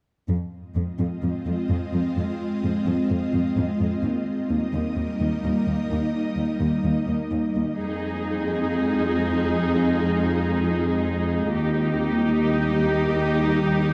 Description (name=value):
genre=cinematic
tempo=128 BPM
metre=4/4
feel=straight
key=F minor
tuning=A4 = 438 Hz
part: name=ethereal airy pad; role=sustained chords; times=1.0-13.9 s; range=G3 to Eb5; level=-28 LUFS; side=equal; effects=ensemble chorus, built-in reverb
part: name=warm symphonic cello section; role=bass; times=0.3-13.9 s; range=Eb2 to F2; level=-27 LUFS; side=equal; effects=none
part: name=rich symphonic viola section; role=accompaniment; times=7.8-13.9 s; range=Eb4 to Ab4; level=-28 LUFS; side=equal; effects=none
room=moderate scoring stage reverb, RT60 1.9 s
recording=dark, warm production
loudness=-24 LUFS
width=mono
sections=0.3-7.8 A section; 7.8-13.9 B section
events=none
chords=0.3 Fm7; 4.0 Eb; 7.8 Fm7; 11.5 Eb